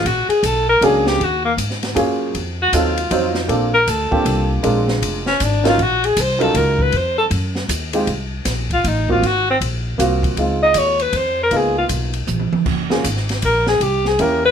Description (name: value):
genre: jazz, small-group swing and bop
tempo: 157 BPM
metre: 3/4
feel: swing 64% on 8ths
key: Bb minor, F minor from 8.1 s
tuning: A4 = 441 Hz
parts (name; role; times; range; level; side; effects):
- clear alto saxophone; melody; 0.0-14.5 s; Bb3 to Eb5; -16 LUFS; left 1 dB; none
- dark baby grand piano; accompaniment; 0.0-14.4 s; F#3 to C5; -19 LUFS; right 2 dB; none
- upright bass; bass; 0.0-14.5 s; F1 to Ab2; -22 LUFS; equal; none
- open jazz drum kit; drums; 0.1-14.3 s; crash cymbal, hi-hat, kick drum, ride cymbal, snare drum, toms; -24 LUFS; equal; none
room: light reverb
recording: none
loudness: -15 LUFS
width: side -8 dB against mid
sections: 0.0-8.1 A section; 8.1-14.5 B section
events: drum fill 12.3-12.7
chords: 0.0 Bb7alt; 1.2 Ebm11; 2.3 F7b9; 3.5 Bbmaj9; 4.6 Bb7; 5.8 Ebm9; 6.9 F5; 9.2 Ab13; 10.4 Dbmaj9; 11.5 Db13; 12.7 Gbadd9; 13.8 C7b9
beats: | 0.05 0.43 0.81 | 1.20 1.58 1.96 | 2.34 2.72 3.11 | 3.49 3.87 4.25 | 4.63 5.02 5.40 | 5.78 6.16 6.54 | 6.92 7.31 7.69 | 8.07 8.45 8.84 | 9.22 9.60 9.98 | 10.36 10.75 11.13 | 11.51 11.89 12.28 | 12.66 13.04 13.42 | 13.80 14.19